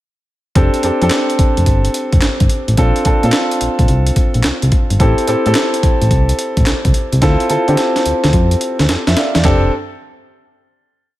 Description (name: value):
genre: R&B, new jack swing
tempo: 108 BPM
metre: 4/4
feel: swing 66% on 16ths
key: F major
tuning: A4 = 440 Hz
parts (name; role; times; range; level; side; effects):
- warm concert grand piano; accompaniment; 0.6-9.7 s; C4 to F5; -16 LUFS; equal; none
- solid FM bass; bass; 0.6-9.7 s; F1 to D3; -14 LUFS; equal; none
- breakbeat sampler-style drum kit; drums; 0.6-9.6 s; handclaps, hi-hat, kick drum, snare drum, toms; -15 LUFS; equal; none
room: light reverb, digital ambience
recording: none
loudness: -12 LUFS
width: side -15 dB against mid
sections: 0.6-9.4 verse; 9.4-11.2 final chord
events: drum fill 7.2-9.4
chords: 0.6 F69; 2.8 Bbmaj9; 5.0 Am7; 7.2 Dm9; 9.4 F69